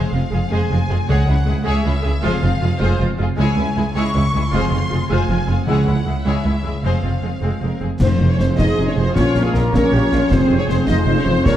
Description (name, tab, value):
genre	cinematic, heroic adventure film score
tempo	104 BPM (dotted quarters)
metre	6/8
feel	straight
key	F minor from 8.0 s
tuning	A4 = 445 Hz
part	clear symphonic violin section	melody	0.0-11.6 s	Ab4 to C#6	-28 LUFS	left 2 dB	none
part	rich studio violin section	second line	0.0-11.5 s	C4 to Eb5	-28 LUFS	left 2 dB	none
part	rich symphonic viola section	accompaniment	0.0-11.6 s	Ab3 to C5	-25 LUFS	right 1 dB	none
part	concert harp	arpeggios	0.0-11.6 s	F2 to C6	-27 LUFS	left 4 dB	none
part	clear symphonic cello section	bass	0.1-11.5 s	C#2 to Bb2	-22 LUFS	right 1 dB	none
part	clear symphonic double bass section	bass	0.1-11.5 s	F1 to C#2	-21 LUFS	right 1 dB	none
part	timpani	percussion	1.1-1.6, 5.7-8.5 s	F2 to C#3	-21 LUFS	equal	none
part	small flute group	second line	8.0-11.6 s	Ab4 to Eb5	-27 LUFS	equal	none
part	clear trombone section	sustained chords	8.0-11.6 s	F3 to Bb3	-26 LUFS	right 2 dB	none
part	mellow French horn section	sustained chords	8.0-11.6 s	Ab3 to Eb4	-20 LUFS	left 2 dB	none
part	mellow tuba	bass	8.0-11.5 s	F1 to Bb1	-23 LUFS	right 2 dB	none
part	concert snare drum, clash cymbals and concert bass drum	drums	8.0-11.6 s	none	-23 LUFS	equal	none
room	moderate scoring stage reverb, RT60 1.7 s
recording	dark, warm production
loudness	-15 LUFS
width	side -11 dB against mid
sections	0.0-8.0 A section; 8.0-11.6 B section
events	none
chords	0.0 Fm; 1.1 C#m; 2.2 Fm; 3.4 C#m; 4.5 Fm; 5.7 C#m; 6.8 Fm; 9.2 Bbm; 10.3 Fm